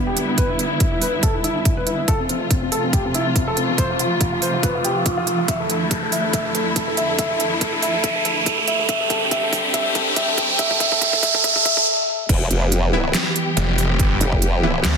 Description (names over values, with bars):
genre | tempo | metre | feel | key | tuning
heavy wobble dubstep | 141 BPM | 4/4 | swing 55% on 16ths, half-time | E phrygian | A4 = 441 Hz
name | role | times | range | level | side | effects
dark grand piano | melody | 0.0-11.8 s | B3 to E5 | -23 LUFS | left 1 dB | ping-pong delay
dark symphonic string section | sustained chords | 0.0-15.0 s | F2 to G4 | -25 LUFS | equal | sidechain pumping, low-pass filter
riser | sound effects | 0.9-11.9 s | none | -22 LUFS | right 2 dB | none
dubstep drum kit | drums | 0.2-14.9 s | crash cymbal, handclaps, hi-hat, rim click, snare drum | -23 LUFS | right 4 dB | none
electronic kick drum | drums | 0.4-14.4 s | none | -22 LUFS | equal | none
formant-sweep wobble bass | bass | 12.3-14.8 s | E1 to F1 | -19 LUFS | equal | chorus, overdrive
orchestra-hit-like synth stab | stabs | 12.9-15.0 s | E3 to E4 | -24 LUFS | left 1 dB | built-in reverb, ping-pong delay
snarling distorted saw bass | bass | 13.6-15.0 s | F1 to D2 | -18 LUFS | equal | distortion, overdrive
room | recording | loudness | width
moderate lush hall reverb, RT60 1.8 s, digital ambience | dense, heavily limited modern master, high-pass filter | -17 LUFS | side -5 dB against mid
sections
0.0-12.3 A section; 12.3-15.0 B section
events
build-up 0.0-12.3; filter sweep on string section 0.0-12.3; filter sweep 0.0-12.3; riser 0.9-11.9; drum fill 5.5-11.9; stop 11.9-12.3; drop 12.3-15.0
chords
0.0 Em7; 2.1 F; 5.5 Dmadd9/F; 8.9 Gsus4; 12.3 Em